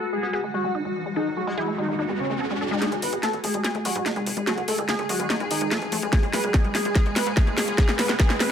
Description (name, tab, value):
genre	psychedelic trance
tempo	145 BPM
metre	4/4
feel	straight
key	G# phrygian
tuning	A4 = 435 Hz
part	wide unison lead	melody	0.0-8.5 s	C#4 to B4	-28 LUFS	equal	phaser, sidechain pumping, dub echo
part	evolving wavetable pad	sustained chords	0.0-8.5 s	F#4 to G#4	-32 LUFS	equal	ensemble chorus, built-in reverb, phaser, sidechain pumping
part	riser	sound effects	0.5-8.5 s	none	-34 LUFS	right 1 dB	none
part	wide unison pluck	riff	0.1-8.5 s	G#3 to A4	-30 LUFS	left 1 dB	auto-pan, cassette tape, sidechain pumping, ping-pong delay
part	metallic wobble bass	second line	0.2-1.6 s	G#3 to B3	-40 LUFS	left 2 dB	none
part	drum and bass drum kit	drums	2.8-8.5 s	hi-hat, snare drum	-26 LUFS	equal	overdrive, low-pass filter on snare, studio reverb, low-pass filter on hats
part	tight sequencer bass	bass	2.9-8.5 s	G#1 to G#2	-36 LUFS	equal	tube saturation, high-pass filter
part	electronic kick drum	drums	6.1-8.3 s	none	-20 LUFS	equal	overdrive, studio reverb
room	light reverb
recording	low-pass filter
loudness	-22 LUFS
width	side -8 dB against mid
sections	0.0-2.8 A section; 2.8-8.5 B section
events	riser 0.5-2.8, 2.8-8.5; build-up 2.8-8.5; drum fill 2.8-8.5; filter sweep on synth arpeggio sound 2.8-8.5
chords	0.0 G#5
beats	0.33 0.75 | 1.16 1.57 1.99 2.40 | 2.82 3.23 3.64 4.06 | 4.47 4.89 5.30 5.71 | 6.13 6.54 6.96 7.37 | 7.78 8.20